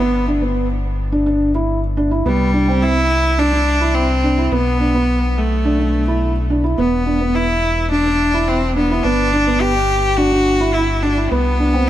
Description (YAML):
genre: piano and strings electronica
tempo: 106 BPM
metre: 4/4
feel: straight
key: unclear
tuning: A4 = 441 Hz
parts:
  - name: bright cello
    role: melody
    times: 0.0-11.9 s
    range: G3 to G4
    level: -18 LUFS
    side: equal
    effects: none
  - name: felt-muted upright piano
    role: riff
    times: 0.0-11.9 s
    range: B3 to E4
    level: -18 LUFS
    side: equal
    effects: digital delay
  - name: round analog bass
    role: bass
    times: 0.0-11.9 s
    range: E1 to C2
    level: -20 LUFS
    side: equal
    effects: none
room: light reverb, studio ambience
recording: none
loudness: -14 LUFS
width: side -12 dB against mid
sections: 0.0-11.9 A section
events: none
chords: 0.0 G; 2.3 C; 4.5 Bm7; 6.8 E5; 9.0 Gmaj7; 11.3 Cmaj7(no3)